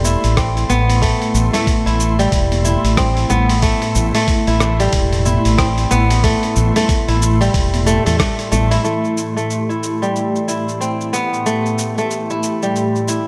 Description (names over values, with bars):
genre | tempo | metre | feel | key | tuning
organic downtempo | 92 BPM | 4/4 | swing 60% on 16ths | A minor | A4 = 441 Hz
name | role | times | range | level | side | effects
ethereal airy pad | sustained chords | 0.0-13.3 s | A2 to C6 | -24 LUFS | equal | ensemble chorus, built-in reverb, sidechain pumping
kora | arpeggios | 0.0-13.3 s | G3 to E4 | -21 LUFS | equal | low-pass filter, digital delay
mellow fretless electric bass | bass | 0.0-8.8 s | E1 to E2 | -19 LUFS | equal | subtle chorus, sidechain pumping
dusty soul sampler-style drum kit | drums | 0.0-13.2 s | cabasa, hi-hat, rim click | -26 LUFS | equal | overdrive
congas and bongos | percussion | 0.0-8.7 s | none | -29 LUFS | equal | none
bronze singing bowl | texture | 0.0-13.3 s | E3 to A4 | -36 LUFS | equal | none
electronic kick drum | drums | 0.4-8.3 s | none | -21 LUFS | equal | overdrive
room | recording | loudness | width
light reverb, digital ambience | none | -16 LUFS | mono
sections
0.0-8.8 A section; 8.8-13.3 B section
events
none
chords
0.0 Am7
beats
0.37 | 1.02 1.67 2.32 2.98 | 3.63 4.28 4.93 5.58 | 6.24 6.89 7.54 8.19 | 8.85 9.50 10.15 10.80 | 11.45 12.11 12.76